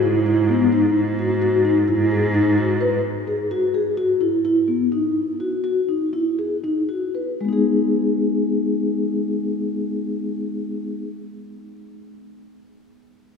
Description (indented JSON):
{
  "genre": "contemporary instrumental, chamber music in an uneven meter",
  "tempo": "228-259 BPM (eighths)",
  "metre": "9/8",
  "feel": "straight",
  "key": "G# minor",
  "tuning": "A4 = 441 Hz",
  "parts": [
    { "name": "vibraphone with soft mallets", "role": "arpeggios", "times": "0.0-11.1 s", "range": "G#3 to B4", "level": "-19 LUFS", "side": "left 2 dB", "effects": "none" },
    { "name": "clear cello", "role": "bass", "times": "0.0-3.0 s", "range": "G#2", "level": "-24 LUFS", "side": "right 2 dB", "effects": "none" }
  ],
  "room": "wet cathedral reverb, RT60 5.1 s",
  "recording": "recorded in a church or concert hall",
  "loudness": "-18 LUFS",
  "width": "side -6 dB against mid",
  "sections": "0.0-7.4 A section; 7.4-12.2 B section",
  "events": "slowing down 3.5-7.4",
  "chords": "0.0 Emaj7/G#; 1.0 D#m/G#; 1.9 N.C.; 3.0 F#sus2; 4.0 Esus2; 5.2 D#m; 6.1 Emaj9; 7.4 G#m",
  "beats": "0.03 0.26 0.49 0.72 | 0.95 1.19 1.42 1.65 1.88 2.11 2.35 2.58 2.81 | 3.04 3.27 3.51 3.74 3.97 4.21 4.44 4.68 4.91 | 5.15 5.39 5.64 5.88 6.13 6.38 6.63 6.89 7.14 | 7.41 7.67 7.93 8.20 8.46 8.72 8.99 9.25 9.52 | 9.78 10.04 10.31 10.57 10.83"
}